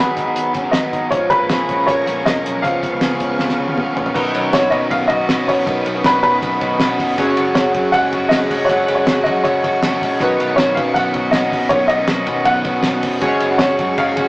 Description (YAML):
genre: jangly indie pop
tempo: 159 BPM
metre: 4/4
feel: straight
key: unclear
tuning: A4 = 440 Hz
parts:
  - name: warm upright piano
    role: melody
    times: 0.0-14.3 s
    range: B4 to F#5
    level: -17 LUFS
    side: equal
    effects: none
  - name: biting overdriven guitar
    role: accompaniment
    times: 0.0-14.3 s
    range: G#2 to F#4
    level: -23 LUFS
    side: equal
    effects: none
  - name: electric guitar through a small old amp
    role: arpeggios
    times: 0.0-14.3 s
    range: D#3 to G#4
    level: -22 LUFS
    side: equal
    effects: spring reverb
  - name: vintage muted picked electric bass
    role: bass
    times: 0.0-14.3 s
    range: E#1 to B2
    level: -31 LUFS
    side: equal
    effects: none
  - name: cloth-damped thuddy drum kit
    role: drums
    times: 0.2-14.3 s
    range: crash cymbal, hi-hat, kick drum, ride cymbal, snare drum, toms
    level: -21 LUFS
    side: equal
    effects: none
  - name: ensemble organ-string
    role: sustained chords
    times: 1.1-14.3 s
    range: F#4 to C#6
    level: -26 LUFS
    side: equal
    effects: ensemble chorus
  - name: chorused retro synth keys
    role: accompaniment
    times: 4.1-14.3 s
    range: C#4 to C#5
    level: -23 LUFS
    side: equal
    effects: none
room: wet studio reverb, RT60 0.5 s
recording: rough rehearsal-room recording, warm saturation, vinyl crackle, small speaker sound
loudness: -14 LUFS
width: side -23 dB against mid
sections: 0.0-4.2 A section; 4.2-14.3 B section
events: drum fill 3.4-4.2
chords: 0.0 G#m7; 1.1 A#m7; 2.6 C#7; 4.2 Badd9; 7.2 F#sus2; 10.2 Badd9; 13.2 F#sus2